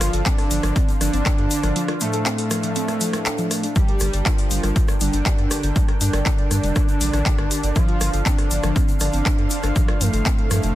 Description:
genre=melodic techno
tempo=120 BPM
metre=4/4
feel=straight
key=unclear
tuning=A4 = 439 Hz
part: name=fat analog lead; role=melody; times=0.0-10.8 s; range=A3 to G4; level=-26 LUFS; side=equal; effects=chorus, sidechain pumping, dub echo
part: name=soft supersaw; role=second line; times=0.0-10.8 s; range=A2 to G3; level=-31 LUFS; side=right 1 dB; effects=sidechain pumping, ping-pong delay
part: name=warm analog pad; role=sustained chords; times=0.0-10.8 s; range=D4 to G5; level=-32 LUFS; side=right 3 dB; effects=chorus, sidechain pumping
part: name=soft round pluck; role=arpeggios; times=0.0-10.7 s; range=F3 to D5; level=-29 LUFS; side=equal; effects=chorus, sidechain pumping, ping-pong delay
part: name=round analog bass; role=bass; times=0.0-10.7 s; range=F1 to G2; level=-22 LUFS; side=equal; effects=sidechain pumping
part: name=techno drum kit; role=drums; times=0.0-10.7 s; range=handclaps, hi-hat, rim click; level=-26 LUFS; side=left 1 dB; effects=soft clipping on snare
part: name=egg shaker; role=percussion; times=0.0-10.7 s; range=none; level=-33 LUFS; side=left 5 dB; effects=none
part: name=electronic kick drum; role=drums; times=0.3-10.4 s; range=none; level=-20 LUFS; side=equal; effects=none
room=digital ambience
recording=dense, heavily limited modern master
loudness=-18 LUFS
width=side -14 dB against mid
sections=0.0-10.8 A section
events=break 1.8-3.8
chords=0.0 Dm7/G; 3.8 Gm; 7.8 Dm7/G

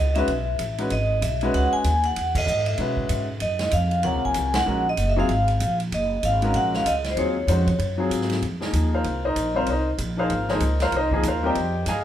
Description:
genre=modal jazz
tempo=192 BPM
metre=4/4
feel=swing 61% on 8ths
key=F minor from 8.4 s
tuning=A4 = 440 Hz
part: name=vibraphone with medium hard mallets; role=melody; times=0.0-8.1 s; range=B#4 to G#5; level=-24 LUFS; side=equal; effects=none
part: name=upright bass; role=bass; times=0.0-12.0 s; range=F#1 to B2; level=-25 LUFS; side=equal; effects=none
part: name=bright upright piano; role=accompaniment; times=0.2-12.0 s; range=B#2 to Ab5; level=-25 LUFS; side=left 1 dB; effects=none
part: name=vintage drum kit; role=drums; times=0.2-11.9 s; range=crash cymbal, hi-hat, kick drum, ride cymbal, snare drum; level=-32 LUFS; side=right 2 dB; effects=none
room=moderate large studio reverb, RT60 1.4 s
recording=band playing live in one room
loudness=-20 LUFS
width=side -11 dB against mid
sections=0.0-8.4 A section; 8.4-12.0 B section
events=band accent 2.3, 4.5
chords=0.0 C#m11; 3.4 D#m11; 8.4 Fm11

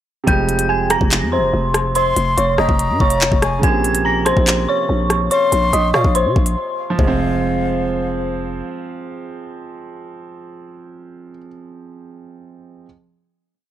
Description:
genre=hip hop, drill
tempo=143 BPM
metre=4/4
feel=half-time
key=F minor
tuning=A4 = 442 Hz
part: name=clear grand piano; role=accompaniment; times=0.2-12.9 s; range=C3 to C4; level=-25 LUFS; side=right 5 dB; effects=low-pass filter
part: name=dark detuned synth bell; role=melody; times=0.3-8.2 s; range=C5 to Bb6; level=-19 LUFS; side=equal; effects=chorus, phaser, low-pass filter, tape echo
part: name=growling 808-style bass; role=bass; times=0.3-8.6 s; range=F1 to Db3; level=-20 LUFS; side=equal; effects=none
part: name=drill drum kit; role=drums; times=0.3-7.1 s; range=handclaps, hi-hat, kick drum, rim click, toms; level=-17 LUFS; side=equal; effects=none
part: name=breathy jazz flute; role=second line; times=2.0-8.2 s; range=F5 to C6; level=-24 LUFS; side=left 3 dB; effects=tape echo
room=little or no reverb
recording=dry, gritty hardware recording, transformer saturation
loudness=-14 LUFS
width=side -11 dB against mid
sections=0.3-7.0 hook; 7.0-10.3 final chord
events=break 6.6-7.0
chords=0.3 Fm; 3.6 Bbmadd9; 7.0 Fm

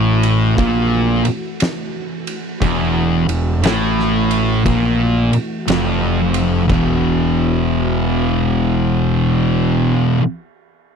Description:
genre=stoner and doom metal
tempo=59 BPM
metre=4/4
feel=swing 66% on 8ths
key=unclear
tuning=A4 = 440 Hz
part: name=string machine, violas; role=sustained chords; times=0.0-9.9 s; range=E3 to F#4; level=-28 LUFS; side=equal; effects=none
part: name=thick fuzz guitar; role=riff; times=0.0-10.2 s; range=E2 to E3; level=-18 LUFS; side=left 10 dB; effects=distortion
part: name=thick fuzz guitar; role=riff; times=0.0-10.2 s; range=E2 to E3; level=-18 LUFS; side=right 9 dB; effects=distortion
part: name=fuzz fingered electric bass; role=bass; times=0.0-9.9 s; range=E1 to A#1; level=-22 LUFS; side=equal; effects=overdrive
part: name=oversized low-tuned drum kit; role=drums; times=0.2-7.0 s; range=kick drum, ride cymbal, snare drum, toms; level=-24 LUFS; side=equal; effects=none
room=little or no reverb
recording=dry, close 1970s-style studio recording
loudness=-14 LUFS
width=side -6 dB against mid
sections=0.0-6.7 A section; 6.7-10.8 B section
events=none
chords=0.0 E5

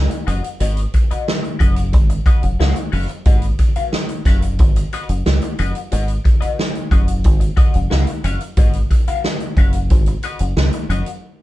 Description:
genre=funk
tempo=90 BPM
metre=4/4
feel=straight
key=G# dorian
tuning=A4 = 435 Hz
part: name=deep dub fingered electric bass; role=bass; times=0.0-11.0 s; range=F#1 to C#2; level=-18 LUFS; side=equal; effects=none
part: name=electric guitar at the edge of break-up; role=accompaniment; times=0.1-11.1 s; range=F#4 to E#5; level=-27 LUFS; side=left 6 dB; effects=wah
part: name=swinging big-band drum kit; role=drums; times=0.1-11.2 s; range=hi-hat, kick drum, snare drum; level=-16 LUFS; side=equal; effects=vintage 12-bit sampler grit
room=light reverb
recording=band playing live in one room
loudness=-14 LUFS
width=side -16 dB against mid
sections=0.0-11.4 A section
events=band accent 11.2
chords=0.0 G#m7

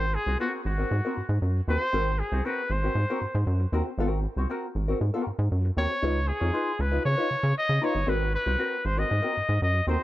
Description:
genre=funk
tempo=117 BPM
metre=4/4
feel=straight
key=Ab mixolydian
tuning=A4 = 441 Hz
part: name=clear trumpet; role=melody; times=0.0-10.0 s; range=Gb4 to Eb5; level=-28 LUFS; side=left 1 dB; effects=tape echo
part: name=hollow-body jazz guitar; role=accompaniment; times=0.0-10.0 s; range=C4 to Db5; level=-32 LUFS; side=left 2 dB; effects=wah
part: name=rubbery square bass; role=bass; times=0.0-10.0 s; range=G1 to Db3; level=-26 LUFS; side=equal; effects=none
room=little or no reverb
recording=none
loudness=-24 LUFS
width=side -15 dB against mid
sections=0.0-10.0 A section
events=none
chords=0.0 Ab9; 6.0 Db9; 8.1 Ab9

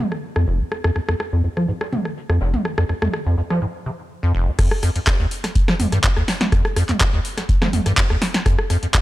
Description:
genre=acid house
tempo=124 BPM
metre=4/4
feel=straight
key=F minor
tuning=A4 = 439 Hz
part: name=deep acid bass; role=riff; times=0.0-9.0 s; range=F1 to F3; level=-20 LUFS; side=equal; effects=tube saturation, wide subtle chorus
part: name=electro analog drum machine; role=drums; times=0.1-9.0 s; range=crash cymbal, handclaps, hi-hat, rim click, snare drum, toms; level=-22 LUFS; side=equal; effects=none
part: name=jazz brush drum kit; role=drums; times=0.2-9.0 s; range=hi-hat, snare drum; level=-36 LUFS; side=left 2 dB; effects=sidechain pumping on hats, high-pass filter on hats, low-pass filter on hats, high-pass filter on snare, low-pass filter on snare, high-pass filter on room, low-pass filter on room
part: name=electronic kick drum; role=drums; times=4.6-9.0 s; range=none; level=-19 LUFS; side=equal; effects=none
room=little or no reverb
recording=none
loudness=-17 LUFS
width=side -16 dB against mid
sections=0.0-4.6 A section; 4.6-9.0 B section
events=drop 4.6-9.0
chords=none

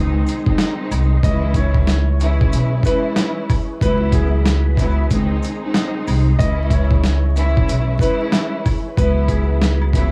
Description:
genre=hip hop, boom-bap hip-hop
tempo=93 BPM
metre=4/4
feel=swing 61% on 16ths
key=C# minor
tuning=A4 = 440 Hz
part: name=warm upright piano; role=melody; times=0.0-10.1 s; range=G#4 to D#5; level=-29 LUFS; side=equal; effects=high-pass filter, low-pass filter, dub echo
part: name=warm studio string section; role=accompaniment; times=0.0-10.1 s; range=C#2 to E4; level=-26 LUFS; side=equal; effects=high-pass filter, low-pass filter
part: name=mellow tonewheel organ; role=sustained chords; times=0.0-10.1 s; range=E4 to B#5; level=-36 LUFS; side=equal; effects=chorus vibrato, slow rotary speaker, high-pass filter, low-pass filter
part: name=upright bass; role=bass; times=0.0-10.1 s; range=B1 to C#2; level=-19 LUFS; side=equal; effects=none
part: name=dusty soul sampler-style drum kit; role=drums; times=0.3-10.1 s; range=hi-hat, kick drum, snare drum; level=-21 LUFS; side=equal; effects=overdrive
part: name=maracas and woodblock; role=percussion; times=0.3-10.1 s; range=none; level=-42 LUFS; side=equal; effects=none
room=light reverb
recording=echo-heavy mix, vinyl crackle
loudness=-17 LUFS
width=mono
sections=0.0-10.1 A section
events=none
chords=0.0 G#/C#; 1.2 C#m; 3.8 Bsus4/C#; 5.1 G#/C#; 6.4 C#m; 9.0 Bsus4/C#

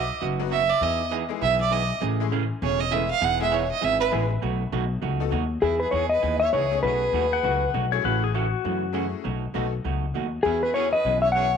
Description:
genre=country, western swing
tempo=199 BPM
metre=4/4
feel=swing 63% on 8ths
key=E major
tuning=A4 = 441 Hz
part: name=clear fiddle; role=second line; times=0.0-7.7, 10.4-11.6 s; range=E4 to F#5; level=-26 LUFS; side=right 6 dB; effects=none
part: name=vintage hollow-body jazz guitar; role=accompaniment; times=0.0-11.5 s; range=B2 to G#4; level=-30 LUFS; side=right 12 dB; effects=none
part: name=upright bass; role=bass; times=0.0-11.5 s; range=E1 to F#2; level=-28 LUFS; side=left 2 dB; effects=none
part: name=tack piano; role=accompaniment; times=0.4-10.9 s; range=F#3 to B4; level=-33 LUFS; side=left 16 dB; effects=none
part: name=clean lap steel guitar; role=melody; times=5.6-7.7, 10.4-11.6 s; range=G#4 to F#5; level=-22 LUFS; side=left 3 dB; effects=none
part: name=pedal steel guitar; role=second line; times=7.3-8.9 s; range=F#4 to F#5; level=-26 LUFS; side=left 15 dB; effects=none
room=wet spring reverb, RT60 1.8 s, small room reverb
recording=1960s-style stereo with parts hard left and right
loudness=-22 LUFS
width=side -7 dB against mid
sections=0.0-5.6 A section; 5.6-11.6 B section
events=fiddle solo 0.0-5.6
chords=0.0 B; 0.8 Emaj7; 2.0 Amaj7; 3.2 Emaj7; 4.4 B7; 5.6 Emaj7; 6.8 B13; 8.0 F#m9/A; 9.2 B7; 10.4 E69

